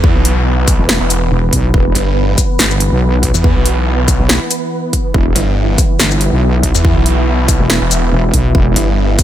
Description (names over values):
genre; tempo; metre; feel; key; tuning
heavy wobble dubstep; 141 BPM; 4/4; swing 54% on 16ths, half-time; E minor; A4 = 441 Hz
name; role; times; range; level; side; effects
supersaw chords; sustained chords; 0.0-9.2 s; E3 to B4; -18 LUFS; right 1 dB; sidechain pumping, low-pass filter
snarling distorted saw bass; bass; 0.0-9.2 s; E1 to E2; -14 LUFS; equal; distortion, overdrive
electronic kick drum; drums; 0.0-9.2 s; none; -14 LUFS; equal; studio ambience
big-room dance drum kit; drums; 0.2-9.2 s; hi-hat, shaker, snare drum; -15 LUFS; left 1 dB; studio ambience
wobble bass; bass; 0.8-8.7 s; E1 to B1; -13 LUFS; equal; chorus, overdrive
room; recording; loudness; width
little or no reverb; none; -10 LUFS; side -12 dB against mid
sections
0.0-9.2 A section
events
none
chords
0.0 E5